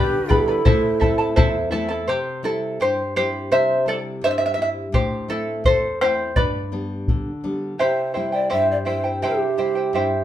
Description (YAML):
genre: andean folk, Andean ensemble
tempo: 84 BPM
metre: 2/4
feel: straight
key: unclear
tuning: A4 = 440 Hz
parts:
  - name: breathy mellow large pan pipes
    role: melody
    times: 0.0-1.7, 7.8-10.2 s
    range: G4 to E5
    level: -22 LUFS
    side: right 3 dB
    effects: none
  - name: breathy large quena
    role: second line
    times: 0.0-1.7 s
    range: E4 to G4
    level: -26 LUFS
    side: left 2 dB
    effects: none
  - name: charango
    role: accompaniment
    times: 0.0-10.2 s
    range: E4 to B5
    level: -21 LUFS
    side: equal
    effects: none
  - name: nylon-string guitar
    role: accompaniment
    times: 0.0-10.2 s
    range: E2 to E4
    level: -28 LUFS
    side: left 2 dB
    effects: none
  - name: bombo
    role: percussion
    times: 0.3-1.5, 4.9-7.2 s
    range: none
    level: -20 LUFS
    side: left 1 dB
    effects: none
room: wet large studio reverb, RT60 0.9 s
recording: band playing live in one room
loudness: -18 LUFS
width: side -12 dB against mid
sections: 0.0-2.1 A section; 2.1-7.8 B section; 7.8-10.2 C section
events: charango solo 2.1-7.8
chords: 0.0 G; 0.7 Am; 2.1 C; 4.9 Am; 6.4 G; 7.8 C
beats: | 0.65 1.37 | 2.08 2.79 | 3.51 4.22 | 4.94 5.66 | 6.37 7.08 | 7.80 8.51 | 9.23 9.94